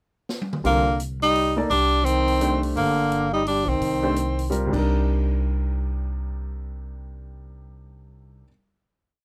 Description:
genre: modal jazz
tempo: 171 BPM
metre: 3/4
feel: swing 62% on 8ths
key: C dorian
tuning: A4 = 440 Hz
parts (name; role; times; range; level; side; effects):
- swinging big-band drum kit; drums; 0.3-4.8 s; crash cymbal, hi-hat, kick drum, snare drum, toms; -39 LUFS; equal; none
- clear baby grand piano; accompaniment; 0.6-8.5 s; C3 to D5; -29 LUFS; equal; none
- upright bass; bass; 0.6-8.4 s; G1 to C2; -29 LUFS; equal; none
- clear tenor saxophone; melody; 0.7-4.5 s; Bb3 to Eb4; -24 LUFS; equal; none
- breathy trombone; second line; 0.7-4.5 s; D3 to G3; -29 LUFS; equal; none
room: light reverb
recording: none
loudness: -23 LUFS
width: mono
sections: 0.0-0.6 pickup bar; 0.6-4.9 A section; 4.9-7.0 final hit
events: drum fill 0.3-0.6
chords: 0.0 N.C.; 0.6 Cm9

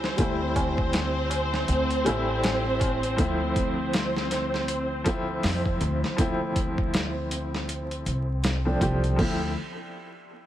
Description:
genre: trip hop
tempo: 80 BPM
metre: 4/4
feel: swing 59% on 16ths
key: D minor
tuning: A4 = 440 Hz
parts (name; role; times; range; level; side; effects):
- felt-muted upright piano; accompaniment; 0.0-9.5 s; F3 to G4; -30 LUFS; equal; tremolo, tape echo
- rich studio string section; sustained chords; 0.0-9.2 s; C4 to C5; -30 LUFS; right 1 dB; low-pass filter
- upright bass; bass; 0.0-9.5 s; A1 to F2; -29 LUFS; left 1 dB; none
- dusty soul sampler-style drum kit; drums; 0.0-9.4 s; crash cymbal, hi-hat, kick drum, snare drum; -29 LUFS; equal; overdrive
- tabla; percussion; 0.0-3.2 s; none; -36 LUFS; right 2 dB; none
room: light reverb, studio ambience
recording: vinyl crackle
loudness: -24 LUFS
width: side -12 dB against mid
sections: 0.0-9.2 A section; 9.2-10.5 B section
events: filter sweep on string section 0.0-9.2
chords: 0.0 Am7/D; 3.2 Dm7

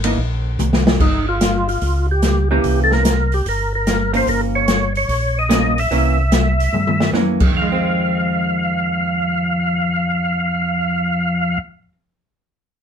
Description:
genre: soul jazz organ trio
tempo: 147 BPM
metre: 4/4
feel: swing 67% on 8ths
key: F minor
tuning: A4 = 440 Hz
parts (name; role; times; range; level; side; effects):
- vintage hollow-body jazz guitar; accompaniment; 0.0-11.9 s; Eb3 to D#4; -22 LUFS; right 2 dB; none
- mellow tonewheel organ; bass; 0.0-11.6 s; G1 to G2; -20 LUFS; equal; chorus vibrato, slow rotary speaker
- open jazz drum kit; drums; 0.0-7.5 s; crash cymbal, hi-hat, kick drum, ride cymbal, snare drum, toms; -19 LUFS; left 1 dB; none
- percussive tonewheel organ; melody; 1.0-11.6 s; Eb4 to F5; -20 LUFS; equal; slow rotary speaker, overdrive, chorus vibrato
room: moderate small room reverb, RT60 0.5 s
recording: band playing live in one room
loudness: -15 LUFS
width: side -7 dB against mid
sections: 1.0-7.5 A section; 7.5-10.8 B section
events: drum fill 0.6-1.0, 6.7-7.1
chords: 0.0 C7; 1.0 G7(b5, no3); 2.6 C7b9; 4.3 Gm7b5; 5.9 C7b9; 7.5 Fm7

